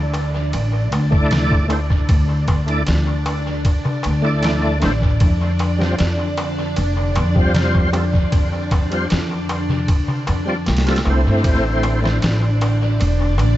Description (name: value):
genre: trip hop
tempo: 77 BPM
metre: 4/4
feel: straight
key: D minor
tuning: A4 = 440 Hz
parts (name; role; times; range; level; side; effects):
- string machine, cellos; sustained chords; 0.0-13.6 s; D4 to D5; -26 LUFS; equal; ensemble chorus, vintage 12-bit sampler grit
- upright bass; bass; 0.0-13.6 s; E1 to G2; -18 LUFS; equal; none
- trip hop sampler-style drum kit; drums; 0.1-13.6 s; kick drum, ride cymbal, snare drum; -21 LUFS; equal; studio reverb, dub echo
- darbuka; percussion; 0.1-13.5 s; none; -28 LUFS; left 1 dB; dub echo
- overdriven tonewheel organ; accompaniment; 1.1-12.2 s; G3 to D5; -24 LUFS; equal; chorus vibrato, slow rotary speaker, tremolo, dub echo
room: digital ambience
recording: echo-heavy mix, vinyl crackle, nothing above 7.9 kHz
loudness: -16 LUFS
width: side -14 dB against mid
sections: 0.0-13.6 A section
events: none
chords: 0.0 Dsus2; 5.2 Fsus2; 11.4 Am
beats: 0.54 1.31 | 2.09 2.87 3.65 4.43 | 5.21 5.99 6.77 7.55 | 8.33 9.11 9.88 10.66 | 11.44 12.22 13.00